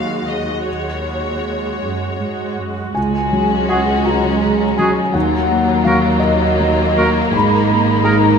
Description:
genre	cinematic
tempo	54 BPM (dotted quarters)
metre	6/8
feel	uneven beats, rubato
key	unclear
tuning	A4 = 441 Hz
part	rich studio violin section	melody	0.0-8.4 s	Eb4 to F5	-26 LUFS	left 2 dB	none
part	dark studio viola section	accompaniment	0.0-8.4 s	Gb3 to Gb4	-24 LUFS	right 1 dB	none
part	felt-muted upright piano	accompaniment	0.0-8.4 s	Db2 to Cb6	-19 LUFS	left 2 dB	none
part	rich studio cello section	bass	0.0-8.4 s	Db2 to Ab2	-23 LUFS	right 5 dB	none
part	dark French horn section	sustained chords	2.9-8.4 s	Gb3 to Eb4	-22 LUFS	left 1 dB	none
part	mellow large flute ensemble	second line	3.0-8.4 s	Eb5 to Cb6	-21 LUFS	left 2 dB	none
part	rich studio violin section	second line	3.0-8.4 s	Bb3 to Db4	-23 LUFS	left 4 dB	none
part	clear studio double bass section	bass	3.0-8.4 s	Ab1 to Eb2	-23 LUFS	right 4 dB	none
part	mellow clarinet	second line	3.7-8.2 s	Gb4 to Ab4	-24 LUFS	equal	none
part	warm oboe	second line	3.7-8.2 s	Ab4 to Bb4	-23 LUFS	right 2 dB	none
room	wet scoring stage reverb, RT60 1.5 s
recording	none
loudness	-14 LUFS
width	side -6 dB against mid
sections	0.0-3.0 A section; 3.0-8.4 B section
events	none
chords	0.0 Gbsus2/Eb; 3.0 Dbsus4; 5.1 Ebmadd9; 7.3 Abmadd9

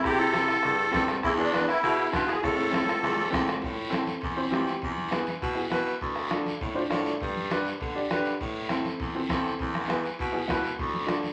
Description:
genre	latin, cumbia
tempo	201 BPM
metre	4/4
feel	straight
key	A minor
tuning	A4 = 440 Hz
part	musette accordion	melody	0.0-3.3 s	D4 to A4	-29 LUFS	equal	none
part	breathy clarinet	second line	0.0-3.3 s	B3 to E4	-38 LUFS	equal	none
part	bombo	percussion	0.0-11.2 s	none	-37 LUFS	equal	none
part	cowbell and timbales	percussion	0.0-11.3 s	none	-40 LUFS	equal	none
part	guiro	percussion	0.0-11.3 s	none	-42 LUFS	equal	none
part	raspy baritone saxophone	bass	0.1-11.3 s	D2 to D3	-34 LUFS	equal	none
part	congas	percussion	0.1-11.3 s	none	-42 LUFS	equal	none
part	clear upright piano	accompaniment	0.2-11.2 s	B3 to D5	-33 LUFS	equal	none
room	wet large studio reverb, RT60 0.9 s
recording	none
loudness	-28 LUFS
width	mono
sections	0.0-3.6 A section; 3.6-11.3 B section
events	drum fill 2.4-3.6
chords	0.0 C; 1.2 E7(no3); 2.4 Am; 4.8 E; 6.0 Dm; 7.2 G; 8.4 Am; 9.6 E; 10.8 Dm

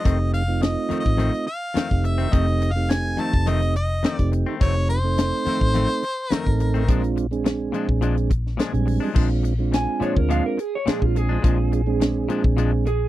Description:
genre	straight-eighth soul blues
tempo	106 BPM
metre	4/4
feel	straight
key	Bb mixolydian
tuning	A4 = 440 Hz
part	clear harmonica	melody	0.0-7.1 s	C5 to A5	-27 LUFS	left 1 dB	overdrive
part	mellow tonewheel organ	accompaniment	0.0-12.9 s	G3 to Ab5	-25 LUFS	right 6 dB	slow rotary speaker
part	direct-recorded clean electric guitar	stabs	0.0-12.9 s	F2 to D4	-28 LUFS	left 7 dB	vibrato effect
part	vintage muted fingered electric bass	bass	0.1-13.1 s	F1 to D2	-22 LUFS	left 1 dB	none
part	tight funk drum kit	drums	0.1-13.0 s	crash cymbal, hi-hat, kick drum, snare drum	-21 LUFS	left 1 dB	none
part	electric guitar through a small old amp	second line	9.7-13.1 s	F4 to Ab5	-27 LUFS	right 3 dB	none
room	little or no reverb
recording	dry, close 1970s-style studio recording, tape saturation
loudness	-19 LUFS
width	side -14 dB against mid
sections	0.0-9.2 A section; 9.2-13.1 B section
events	tonewheel organ fill 8.3-9.2; clean electric guitar solo 9.2-13.1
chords	0.1 F7; 6.9 Bb7

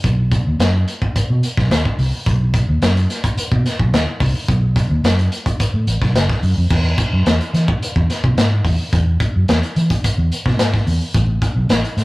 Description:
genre	funk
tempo	108 BPM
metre	4/4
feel	straight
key	unclear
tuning	A4 = 440 Hz
part	vintage muted fingered electric bass	bass	0.0-12.0 s	F#1 to E3	-16 LUFS	equal	none
part	crunchy breakbeat drum kit	drums	0.0-12.0 s	crash cymbal, hi-hat, kick drum, snare drum	-18 LUFS	equal	none
room	light reverb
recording	rough rehearsal-room recording, warm saturation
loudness	-14 LUFS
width	side -20 dB against mid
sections	0.0-6.7 A section; 6.7-12.0 B section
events	none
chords	none

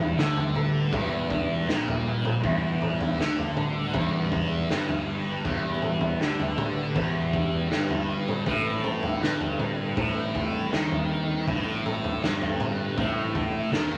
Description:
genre	psychedelic rock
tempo	80 BPM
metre	4/4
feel	straight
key	E minor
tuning	A4 = 440 Hz
part	string machine, full ensemble	sustained chords	0.0-14.0 s	G3 to B4	-38 LUFS	equal	phaser, ensemble chorus
part	thick fuzz guitar	riff	0.0-14.0 s	E2 to D#3	-29 LUFS	equal	distortion, phaser
part	fuzz picked electric bass	bass	0.0-14.0 s	E1 to D#2	-38 LUFS	equal	none
part	raw garage drum kit	drums	0.2-14.0 s	kick drum, snare drum, toms	-31 LUFS	equal	none
room	moderate studio reverb, RT60 0.7 s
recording	vinyl crackle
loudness	-27 LUFS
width	mono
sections	0.0-14.0 A section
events	none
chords	0.0 Em; 8.5 Amadd9

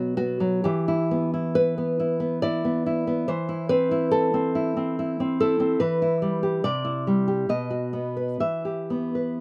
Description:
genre	romantic piece for solo classical guitar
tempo	70 BPM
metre	3/4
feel	uneven beats, rubato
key	E minor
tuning	A4 = 440 Hz
part	nylon-string guitar	solo	0.0-9.4 s	B2 to E5	-25 LUFS	equal	none
room	little or no reverb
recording	recorded outdoors, with no room sound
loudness	-25 LUFS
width	mono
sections	0.0-9.4 A section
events	none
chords	0.0 B; 0.7 Em; 3.3 Am/E; 5.8 Em; 6.6 C; 7.5 B; 8.4 Em

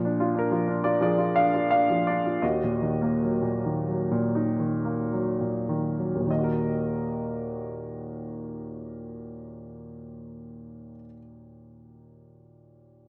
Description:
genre	classical, lyrical solo piano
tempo	49-96 BPM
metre	4/4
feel	rubato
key	Eb harmonic minor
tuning	A4 = 439 Hz
part	clear upright piano	solo	0.0-13.1 s	Eb2 to F5	-28 LUFS	equal	none
room	moderate scoring stage reverb, RT60 1.9 s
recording	dark, warm production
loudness	-26 LUFS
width	mono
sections	0.0-6.3 A section; 6.3-10.9 B section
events	slowing down 0.0-6.3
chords	0.0 Bb7; 2.4 Ebm

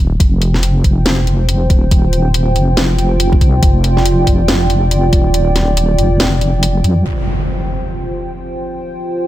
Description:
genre	deep dubstep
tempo	140 BPM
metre	4/4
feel	swing 60% on 16ths, half-time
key	unclear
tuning	A4 = 439 Hz
part	deep soft wobble bass	bass	0.0-7.0 s	Eb1 to F2	-13 LUFS	equal	chorus
part	dark analog pad	sustained chords	0.6-9.3 s	F4 to G5	-19 LUFS	right 1 dB	chorus
part	electronic kick drum	drums	0.2-5.2 s	none	-12 LUFS	equal	overdrive, studio reverb
part	garage drum kit	drums	0.2-6.9 s	hi-hat, snare drum	-18 LUFS	equal	studio reverb
part	impact	sound effects	7.1-8.8 s	none	-21 LUFS	equal	none
room	digital ambience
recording	none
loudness	-11 LUFS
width	side -14 dB against mid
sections	0.0-7.1 A section; 7.1-9.3 B section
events	kick drops out 5.3-7.1; impact 7.1-8.8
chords	0.0 F5

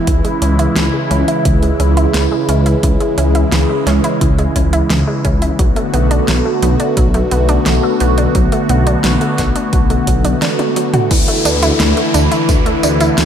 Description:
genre	synthwave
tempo	87 BPM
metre	4/4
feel	straight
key	unclear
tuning	A4 = 440 Hz
part	phased analog pad	sustained chords	0.0-13.2 s	C#3 to F#4	-16 LUFS	equal	phaser, chorus, sidechain pumping
part	analog pluck	arpeggios	0.1-13.2 s	E3 to F#4	-21 LUFS	right 3 dB	chorus, ping-pong delay
part	dark detuned saw bass	bass	0.1-13.2 s	B1 to D2	-15 LUFS	equal	sidechain pumping
part	electronic kick drum	drums	0.1-12.6 s	none	-16 LUFS	equal	small room ambience
part	pop drum kit	drums	0.1-13.2 s	crash cymbal, hi-hat, snare drum, tambourine, toms	-20 LUFS	equal	small room ambience
part	downlifter	sound effects	11.1-13.2 s	none	-20 LUFS	left 2 dB	none
room	light reverb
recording	none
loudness	-11 LUFS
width	side -9 dB against mid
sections	0.0-11.1 A section; 11.1-13.2 B section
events	drum fill 10.4-11.1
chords	0.1 C#m; 5.6 Bm7; 11.1 Dsus2

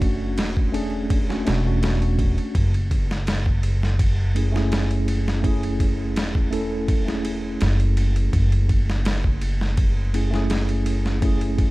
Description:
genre	trip hop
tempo	83 BPM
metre	4/4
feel	straight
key	F# minor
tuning	A4 = 440 Hz
part	mellow tine electric piano	accompaniment	0.0-11.7 s	A3 to A4	-26 LUFS	right 1 dB	medium stereo tremolo, harmonic tremolo, vintage 12-bit sampler grit, tape echo
part	upright bass	bass	0.0-11.7 s	E1 to F#1	-22 LUFS	equal	none
part	dusty soul sampler-style drum kit	drums	0.0-11.7 s	kick drum, ride cymbal, snare drum	-24 LUFS	equal	overdrive
room	little or no reverb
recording	vinyl crackle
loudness	-19 LUFS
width	side -20 dB against mid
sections	0.0-11.7 A section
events	none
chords	0.0 E13sus4; 2.6 F#m9

